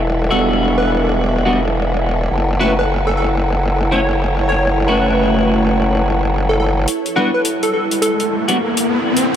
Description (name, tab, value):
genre	glitch hop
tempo	105 BPM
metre	4/4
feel	swing 63% on 16ths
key	E dorian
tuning	A4 = 439 Hz
part	growl bass	bass	0.0-6.9 s	E1 to F#1	-17 LUFS	equal	chorus, overdrive
part	granular cloud pad	texture	0.0-9.4 s	E4 to D5	-22 LUFS	equal	built-in reverb
part	plucky unison lead	melody	0.3-8.3 s	A4 to C#5	-21 LUFS	equal	diffuse ambient delay
part	clean electric guitar	stabs	0.3-8.6 s	G3 to F#4	-20 LUFS	equal	analog chorus, diffuse ambient delay
part	electronic hi-hat	drums	6.9-9.3 s	none	-22 LUFS	left 2 dB	overdrive
part	riser	sound effects	7.6-9.4 s	none	-19 LUFS	left 1 dB	none
room	moderate huge ambient reverb, RT60 8.6 s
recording	dreamy mix soaked in reverb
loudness	-14 LUFS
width	side -9 dB against mid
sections	0.0-6.9 A section; 6.9-9.4 B section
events	build-up 6.9-9.4; riser 7.6-9.4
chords	0.0 Em9; 2.3 F#m7; 6.9 E7(no3)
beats	| 0.03 0.60 1.17 1.74 | 2.31 2.88 3.45 4.03 | 4.60 5.17 5.74 6.31 | 6.88 7.45 8.03 8.60 | 9.17